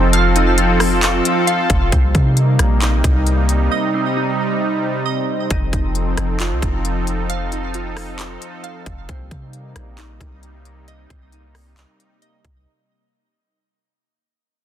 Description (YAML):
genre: hip hop, atmospheric cloud-rap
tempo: 134 BPM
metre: 4/4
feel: half-time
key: C dorian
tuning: A4 = 441 Hz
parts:
  - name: sweeping resonant pad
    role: sustained chords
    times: 0.0-12.6 s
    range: C3 to A4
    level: -20 LUFS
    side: right 1 dB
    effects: chorus, sidechain pumping
  - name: glassy digital keys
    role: arpeggios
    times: 0.0-12.7 s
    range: C4 to F5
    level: -25 LUFS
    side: right 2 dB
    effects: chorus, phaser, digital delay
  - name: soft 808-style bass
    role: bass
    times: 0.0-12.7 s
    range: F1 to C3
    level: -18 LUFS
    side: equal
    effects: none
  - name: trap drum kit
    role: drums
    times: 0.1-12.6 s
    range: handclaps, hi-hat, kick drum, rim click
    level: -20 LUFS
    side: equal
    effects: none
room: little or no reverb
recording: dense, heavily limited modern master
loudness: -15 LUFS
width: side -10 dB against mid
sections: 0.0-12.7 A section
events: fade-out 0.0-12.7; break 3.7-5.5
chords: 0.0 F7; 1.9 Cm7; 5.5 F7; 9.1 Cm7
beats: | 0.13 0.58 1.03 1.48 | 1.92 2.37 2.82 3.27 | 3.71 4.16 4.61 5.06 | 5.51 5.95 6.40 6.85 | 7.30 7.75 8.19 8.64 | 9.09 9.54 9.98 10.43 | 10.88 11.33 11.77 12.22